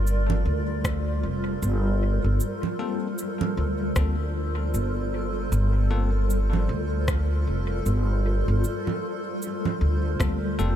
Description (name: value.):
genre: ambient dub.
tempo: 77 BPM.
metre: 4/4.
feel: swing 59% on 16ths.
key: G minor.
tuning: A4 = 441 Hz.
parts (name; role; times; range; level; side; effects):
granular cloud pad; sustained chords; 0.0-10.8 s; G3 to D5; -29 LUFS; equal; built-in reverb.
upright bass; bass; 0.0-10.8 s; F1 to D2; -24 LUFS; equal; tube saturation.
electronic cabasa, congas and rim click; drums; 0.1-10.8 s; none; -31 LUFS; right 5 dB; overdrive, small room ambience, dub echo.
electronic kick drum; drums; 0.8-10.4 s; none; -28 LUFS; equal; overdrive, small room ambience.
bell-like tine electric piano; stabs; 2.8-10.8 s; G3 to A4; -36 LUFS; left 6 dB; dub echo.
room: little or no reverb.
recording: none.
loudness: -23 LUFS.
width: side -10 dB against mid.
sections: 0.0-10.8 A section.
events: none.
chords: 0.0 Gm11.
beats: 0.07 0.85 1.63 | 2.40 3.18 3.96 4.74 | 5.52 6.30 7.08 7.86 | 8.64 9.42 10.20.